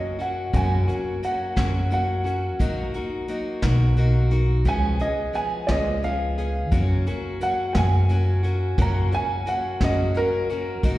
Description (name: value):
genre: acoustic folk duo or small band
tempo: 58 BPM (dotted quarters)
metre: 6/8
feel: straight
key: F# major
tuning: A4 = 440 Hz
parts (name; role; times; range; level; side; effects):
- warm upright piano; melody; 0.0-10.8 s; A#4 to A#5; -26 LUFS; right 1 dB; slapback echo
- picked steel-string acoustic guitar; accompaniment; 0.0-11.0 s; F#2 to G#4; -28 LUFS; left 2 dB; slapback echo
- upright bass; bass; 0.0-11.0 s; B1 to F#2; -22 LUFS; equal; none
- vintage brush drum kit; drums; 0.2-11.0 s; hi-hat, kick drum, snare drum; -25 LUFS; equal; none
room: small room reverb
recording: live gig heard through the venue's PA, recital hall reverb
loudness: -20 LUFS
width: side -16 dB against mid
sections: 0.0-11.0 A section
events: upright piano solo 0.0-11.0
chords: 0.0 F#; 2.6 Bmaj7; 4.7 C#7; 6.7 F#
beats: | 0.55 1.58 | 2.61 3.64 | 4.67 5.70 | 6.73 7.76 | 8.79 9.82 | 10.84